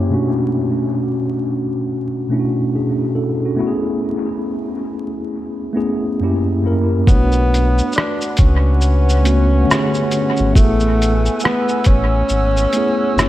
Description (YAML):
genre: lo-fi hip hop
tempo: 69 BPM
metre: 4/4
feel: swing 61% on 16ths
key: B dorian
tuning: A4 = 439 Hz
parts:
  - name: breathy tenor saxophone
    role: melody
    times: 0.0-0.1, 7.1-13.3 s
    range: A3 to D4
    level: -20 LUFS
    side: equal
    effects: low-pass filter, dub echo
  - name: mellow tine electric piano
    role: accompaniment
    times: 0.0-13.3 s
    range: F#2 to C#5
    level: -18 LUFS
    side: equal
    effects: medium stereo tremolo, cassette tape, low-pass filter, dub echo
  - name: hollow soft pad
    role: sustained chords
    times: 7.8-13.3 s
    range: A#4 to E6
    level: -27 LUFS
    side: equal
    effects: chorus, low-pass filter
  - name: sub bass with octave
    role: bass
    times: 7.1-13.3 s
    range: F#1 to C#2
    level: -15 LUFS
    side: equal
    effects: none
  - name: lo-fi sampler-style drum kit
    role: drums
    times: 7.1-13.3 s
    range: hi-hat, kick drum, rim click, shaker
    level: -16 LUFS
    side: equal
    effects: dub echo
room: light reverb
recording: echo-heavy mix, vinyl crackle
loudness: -14 LUFS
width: side -14 dB against mid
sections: 0.0-7.1 A section; 7.1-13.3 B section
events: filter sweep 0.0-7.1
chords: 0.1 Bm9; 3.6 Amaj9; 6.2 F#7b9; 7.1 Bm9; 10.6 F#m11/A